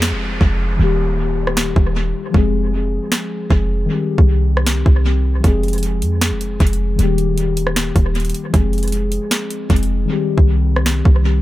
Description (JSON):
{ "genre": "hip hop, trap", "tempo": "155 BPM", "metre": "4/4", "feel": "half-time", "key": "F minor", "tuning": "A4 = 440 Hz", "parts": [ { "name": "muted felt-like synth keys", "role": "accompaniment", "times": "0.0-11.4 s", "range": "Eb3 to Ab4", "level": "-21 LUFS", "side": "left 4 dB", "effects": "chorus, low-pass filter, dub echo" }, { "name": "clean 808-style bass", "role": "bass", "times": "0.0-11.4 s", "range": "Eb1 to F2", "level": "-17 LUFS", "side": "equal", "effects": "none" }, { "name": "trap drum kit", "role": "drums", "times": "0.0-11.1 s", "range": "hi-hat, kick drum, rim click, snare drum", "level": "-17 LUFS", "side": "equal", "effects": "dub echo" }, { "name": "downlifter", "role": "sound effects", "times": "0.0-2.3 s", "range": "none", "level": "-29 LUFS", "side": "right 1 dB", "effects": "none" } ], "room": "little or no reverb", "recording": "echo-heavy mix", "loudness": "-14 LUFS", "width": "side -16 dB against mid", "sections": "0.0-11.4 A section", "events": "break 0.0-5.4; filter sweep on synth keys 0.0-11.4; hi-hats muted 10.1-11.4", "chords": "0.0 Fm; 0.8 Eb; 2.3 Fm; 3.9 Cm; 5.4 Fm; 7.0 Eb; 8.5 Fm; 10.1 Cm" }